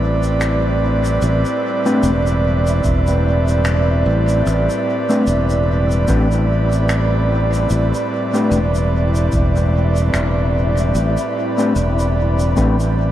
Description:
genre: ambient dub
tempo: 74 BPM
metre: 4/4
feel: swing 57% on 16ths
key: A minor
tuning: A4 = 439 Hz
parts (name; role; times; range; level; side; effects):
- airy breathy pad; sustained chords; 0.0-13.1 s; A2 to D5; -19 LUFS; right 1 dB; chorus
- modern bright fingered electric bass; bass; 0.0-13.1 s; E1 to A1; -17 LUFS; equal; none
- wind-like tuned noise texture; texture; 0.0-13.1 s; C4 to E5; -27 LUFS; left 2 dB; built-in reverb
- shaker and finger snaps; drums; 0.2-12.9 s; none; -30 LUFS; left 1 dB; dub echo
- mellow electric guitar; stabs; 1.9-12.8 s; A3 to B4; -22 LUFS; left 2 dB; low-pass filter, dub echo
- electronic kick drum; drums; 2.8-12.8 s; none; -22 LUFS; equal; none
room: moderate concert hall reverb, RT60 2.0 s, small room ambience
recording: vinyl crackle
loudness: -14 LUFS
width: side -12 dB against mid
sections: 0.0-13.1 A section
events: none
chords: 0.0 Am11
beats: 0.41 | 1.22 2.03 2.84 3.65 | 4.46 5.27 6.08 6.89 | 7.71 8.52 9.33 10.14 | 10.95 11.76 12.57

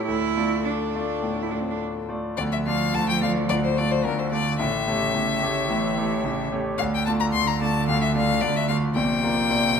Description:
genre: quick classical-period movement for piano trio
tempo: 109 BPM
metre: 4/4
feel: rubato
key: D minor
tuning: A4 = 441 Hz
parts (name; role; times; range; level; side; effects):
- clear violin; melody; 0.0-9.8 s; A4 to C6; -26 LUFS; left 7 dB; none
- clear cello; second line; 0.0-9.8 s; C3 to E4; -29 LUFS; right 7 dB; none
- bright concert grand piano; accompaniment; 0.0-9.8 s; A1 to D5; -24 LUFS; equal; none
room: moderate recital hall reverb, RT60 1.4 s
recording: minimal, uncompressed stereo recording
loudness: -21 LUFS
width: side -6 dB against mid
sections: 0.0-2.4 A section; 2.4-9.8 A section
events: none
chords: 0.1 Dm; 4.6 A7; 6.8 Dm; 8.9 Bb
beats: | 0.08 0.67 1.24 1.80 | 2.38 2.94 3.49 4.04 | 4.58 5.13 5.68 6.22 | 6.78 7.32 7.87 8.41 | 8.95 9.49

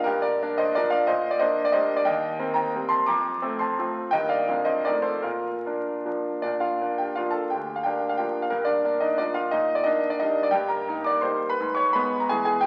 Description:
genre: classical, romantic triple-time dance for piano with dotted rhythms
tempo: 142-189 BPM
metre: 3/4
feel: rubato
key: Bb major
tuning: A4 = 443 Hz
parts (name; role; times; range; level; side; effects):
- bright concert grand piano; solo; 0.0-12.7 s; D2 to D6; -25 LUFS; equal; none
room: wet large studio reverb, RT60 1.5 s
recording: very old 78 rpm record, vinyl crackle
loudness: -25 LUFS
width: mono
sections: 0.0-6.5 A section; 6.5-12.7 A section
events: none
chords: 0.1 Gm7; 1.1 Gm/Bb; 2.1 Cm7/Eb; 3.1 F; 4.1 Eb/G; 4.5 Bb/F; 4.9 F7; 5.2 Bb; 7.5 Bb/D; 8.5 Gm7; 9.5 Gm/Bb; 10.5 Eb/G; 11.6 E/G#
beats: | 0.06 0.41 0.76 | 1.09 1.42 1.75 | 2.06 2.40 2.74 | 3.09 3.43 3.78 | 4.12 4.48 4.86 | 5.25 5.66 6.07 | 6.45 6.82 7.18 | 7.52 7.86 8.20 | 8.53 8.86 9.21 | 9.53 9.87 10.20 | 10.53 10.87 11.23 | 11.58 11.93 12.29 | 12.62

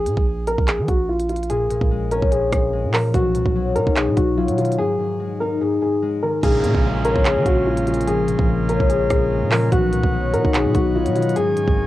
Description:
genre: hip hop, drill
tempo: 146 BPM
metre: 4/4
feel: half-time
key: Bb phrygian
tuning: A4 = 435 Hz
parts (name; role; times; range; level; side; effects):
- dark concert grand piano; melody; 0.0-11.9 s; F4 to Bb4; -22 LUFS; equal; cassette tape
- hard-hitting 808-style bass; bass; 0.0-11.9 s; Ab1 to F3; -24 LUFS; right 1 dB; none
- drill drum kit; drums; 0.1-11.8 s; crash cymbal, handclaps, hi-hat, kick drum, rim click; -21 LUFS; right 1 dB; cassette tape
- concert harp; accompaniment; 1.5-11.9 s; Ab2 to D#4; -22 LUFS; left 4 dB; cassette tape
- chamber organ, principal chorus; sustained chords; 6.4-11.9 s; Db3 to Ab4; -25 LUFS; right 2 dB; cassette tape
- downlifter; sound effects; 6.4-9.7 s; none; -34 LUFS; right 1 dB; none
room: little or no reverb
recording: home recording on cassette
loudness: -17 LUFS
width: side -15 dB against mid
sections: 0.0-6.4 A section; 6.4-11.9 B section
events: break 0.0-1.5, 4.8-6.4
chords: 0.0 Bbm7; 3.1 B; 4.8 Ab5; 6.4 Bbm7; 9.7 B; 11.4 Absus4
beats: 0.27 0.68 1.09 | 1.50 1.91 2.32 2.73 | 3.14 3.55 3.96 4.38 | 4.79 5.20 5.61 6.02 | 6.43 6.84 7.25 7.66 | 8.07 8.49 8.90 9.31 | 9.72 10.13 10.54 10.95 | 11.36 11.77

